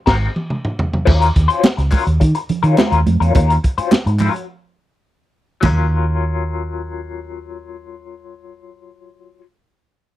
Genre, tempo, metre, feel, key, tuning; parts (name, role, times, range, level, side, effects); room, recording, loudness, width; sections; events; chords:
funk; 105 BPM; 4/4; straight; Eb dorian; A4 = 440 Hz
electric guitar through a small old amp; accompaniment; 0.1-9.4 s; Gb3 to C5; -20 LUFS; left 6 dB; wah, tremolo
vintage muted fingered electric bass; bass; 0.1-9.4 s; Ab1 to Eb3; -16 LUFS; equal
crunchy breakbeat drum kit; drums; 0.1-5.8 s; crash cymbal, hi-hat, kick drum, snare drum, splash cymbal, toms; -16 LUFS; equal
congas; percussion; 1.1-5.9 s; -21 LUFS; right 6 dB
group handclap; percussion; 1.6-5.9 s; -30 LUFS; left 2 dB
little or no reverb; dry, close 1970s-style studio recording; -14 LUFS; side -14 dB against mid
0.0-1.1 A section; 1.1-5.6 B section; 5.6-7.9 C section
drum fill 0.0-1.1; band accent 0.0-1.1; break 4.5-5.6
0.0 Ab9; 1.1 Ebm9